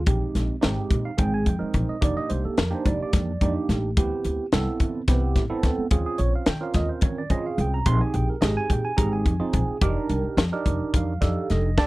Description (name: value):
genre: electric jazz fusion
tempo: 215 BPM (eighths)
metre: 7/8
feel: straight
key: unclear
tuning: A4 = 440 Hz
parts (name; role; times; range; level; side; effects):
- bright tine electric piano; accompaniment; 0.0-11.9 s; Ab3 to C6; -27 LUFS; right 3 dB; phaser
- upright bass; bass; 0.0-11.9 s; F1 to Eb3; -25 LUFS; left 1 dB; none
- crisp fusion drum kit; drums; 0.1-11.9 s; hi-hat, kick drum, snare drum; -24 LUFS; equal; none
room: little or no reverb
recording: none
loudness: -21 LUFS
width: side -19 dB against mid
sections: 0.0-11.9 A section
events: none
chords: 0.1 Bb13sus4; 2.0 F13sus4; 4.0 D13sus4; 5.9 Eb13sus4; 7.9 Bb13sus4; 9.8 F13sus4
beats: | 0.07 0.35 0.63 0.91 1.19 1.47 1.74 | 2.02 2.30 2.58 2.86 3.13 3.41 3.69 | 3.97 4.25 4.53 4.80 5.08 5.36 5.64 | 5.92 6.20 6.48 6.75 7.03 7.31 7.59 | 7.87 8.15 8.43 8.71 8.99 9.27 9.54 | 9.82 10.10 10.38 10.66 10.94 11.22 11.50 | 11.78